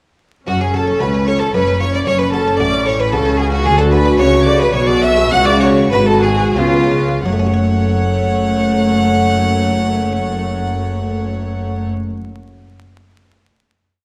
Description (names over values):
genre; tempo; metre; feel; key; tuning
classical, baroque-style concerto movement with solo episodes; 86-114 BPM; 3/4; straight; F# minor; A4 = 438 Hz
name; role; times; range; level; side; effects
clear violin; melody; 0.5-11.9 s; E#4 to F#5; -22 LUFS; equal; none
warm chamber violin section; melody; 0.5-11.9 s; E#5 to F#6; -27 LUFS; equal; none
clear chamber violin section; second line; 0.5-11.9 s; E#4 to F#5; -24 LUFS; equal; none
buff-stop harpsichord; accompaniment; 0.5-12.2 s; C#2 to D5; -28 LUFS; equal; none
rich symphonic viola section; accompaniment; 0.5-11.9 s; A3 to F#4; -22 LUFS; equal; none
rich chamber double bass section; bass; 0.5-11.9 s; F#1 to D2; -22 LUFS; equal; none
warm chamber cello section; bass; 0.5-11.9 s; C#2 to D3; -22 LUFS; equal; none
room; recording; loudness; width
wet recital hall reverb, RT60 1.6 s; vinyl crackle; -15 LUFS; mono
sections
0.5-7.2 ritornello; 7.2-11.4 final chord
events
slowing down 2.9-7.2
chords
0.5 F#m; 1.5 C#7/F#; 2.1 F#m; 3.7 D; 4.8 G#m7b5/B; 5.3 C#7sus4; 6.6 C#7; 7.2 F#m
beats
| 0.48 1.01 1.54 | 2.07 2.60 3.13 | 3.66 4.20 4.75 | 5.32 5.92 6.56 | 7.25 7.94 8.64 | 9.34 10.03 10.72